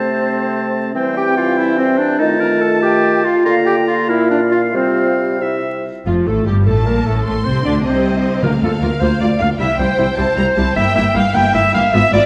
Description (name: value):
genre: classical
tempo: 90-103 BPM (dotted quarters)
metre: 6/8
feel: rubato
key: F major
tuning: A4 = 440 Hz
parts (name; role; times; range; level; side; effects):
- bright oboe; second line; 0.0-5.9 s; E5 to Bb5; -24 LUFS; equal; none
- clear clarinet; second line; 0.0-12.3 s; C4 to G5; -21 LUFS; equal; none
- large flute ensemble; second line; 0.0-5.4 s; C5 to Bb5; -26 LUFS; equal; none
- dark bassoon; accompaniment; 0.0-5.8 s; Bb2 to E3; -23 LUFS; equal; none
- mellow French horn section; sustained chords; 0.0-5.9 s; G3 to F4; -22 LUFS; equal; none
- warm symphonic violin section; second line; 6.1-12.3 s; F4 to G5; -26 LUFS; equal; none
- warm symphonic viola section; accompaniment; 6.1-12.2 s; F3 to F4; -23 LUFS; equal; none
- rich symphonic cello section; bass; 6.1-12.2 s; C2 to D3; -22 LUFS; equal; none
- rich symphonic double bass section; bass; 6.1-12.2 s; F1 to D2; -22 LUFS; equal; none
- warm symphonic violin section; melody; 6.7-12.3 s; Eb5 to C6; -28 LUFS; equal; none
- timpani; percussion; 8.4-9.0 s; D3; -24 LUFS; equal; none
room: wet concert hall reverb, RT60 2.2 s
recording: vinyl crackle, faint mains hum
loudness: -15 LUFS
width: mono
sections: 0.0-6.1 A section; 6.1-12.3 B section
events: none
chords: 0.0 Am/C; 0.9 C/E; 2.2 F7/Eb; 3.5 Bb/D; 4.1 Bb5; 4.8 Csus4; 5.4 C; 6.1 F; 7.3 Amadd11; 8.4 Bb/D; 9.6 C; 10.8 Edim/G